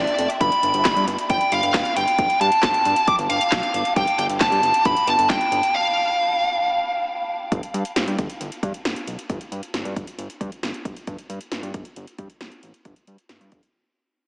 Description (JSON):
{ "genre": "synth-pop", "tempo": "135 BPM", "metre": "4/4", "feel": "straight", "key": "G mixolydian", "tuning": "A4 = 440 Hz", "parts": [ { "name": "fuzz lead guitar", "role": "melody", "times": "0.0-7.0 s", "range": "D5 to D6", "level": "-18 LUFS", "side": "equal", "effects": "distortion, analog delay" }, { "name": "fat analog bass", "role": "bass", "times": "0.0-13.6 s", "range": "F1 to G2", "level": "-27 LUFS", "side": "equal", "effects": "none" }, { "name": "deep house drum kit", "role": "drums", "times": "0.1-13.7 s", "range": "handclaps, hi-hat, kick drum, snare drum", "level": "-26 LUFS", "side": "equal", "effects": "overdrive" } ], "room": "wet huge ambient reverb, RT60 9.2 s", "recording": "dreamy mix soaked in reverb, small speaker sound", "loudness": "-18 LUFS", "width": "side -39 dB against mid", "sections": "0.0-7.5 A section; 7.5-14.3 B section", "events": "break 5.7-7.5, 13.7-14.3; fade-out 7.5-14.3", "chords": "0.4 Gsus2; 5.7 N.C.", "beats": "| 0.41 0.85 1.30 1.74 | 2.19 2.63 3.08 3.52 | 3.96 4.41 4.85 5.30 | 5.74 6.19 6.63 7.08 | 7.52 7.96 8.41 8.85 | 9.30 9.74 10.19 10.63 | 11.07 11.52 11.96 12.41 | 12.85 13.30" }